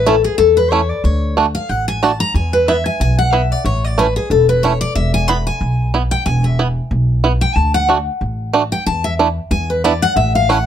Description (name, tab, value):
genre	bluegrass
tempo	184 BPM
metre	4/4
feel	swing 56% on 8ths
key	unclear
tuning	A4 = 440 Hz
part	picked steel-string acoustic guitar	accompaniment	0.0-10.7 s	G#4 to B5	-16 LUFS	left 3 dB	none
part	upright bass	bass	0.0-10.7 s	E1 to E2	-17 LUFS	equal	none
part	bluegrass banjo	melody	0.1-10.6 s	A3 to F#4	-15 LUFS	right 5 dB	none
room	light reverb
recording	close, detailed microphones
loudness	-13 LUFS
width	side -10 dB against mid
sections	0.0-1.0 A section; 1.0-10.7 A section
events	steel-string acoustic guitar solo 0.0-10.7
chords	0.0 A; 1.0 D; 2.3 E5; 3.7 A; 5.0 E; 7.6 D5; 8.9 Esus4; 9.5 E5